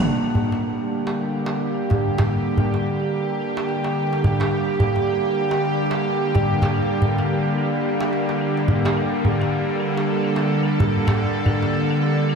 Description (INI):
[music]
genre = organic downtempo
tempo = 108 BPM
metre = 4/4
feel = swing 59% on 16ths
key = G minor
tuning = A4 = 443 Hz
[part]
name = bowed-like drone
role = sustained chords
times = 0.0-12.4 s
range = D3 to A4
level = -20 LUFS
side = right 1 dB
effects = built-in reverb
[part]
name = claves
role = drums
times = 0.1-12.4 s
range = none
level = -30 LUFS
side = equal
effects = low-pass filter on perc, low-pass filter on hats, low-pass filter on snare, low-pass filter on toms
[part]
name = darbuka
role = percussion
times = 0.3-11.7 s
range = none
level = -23 LUFS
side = equal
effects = none
[sound]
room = moderate huge ambient reverb, RT60 4.6 s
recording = played on a big sound system in a bare room, stone room reverb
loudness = -19 LUFS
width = side -5 dB against mid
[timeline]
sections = 0.1-12.4 A section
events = none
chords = 0.1 Gm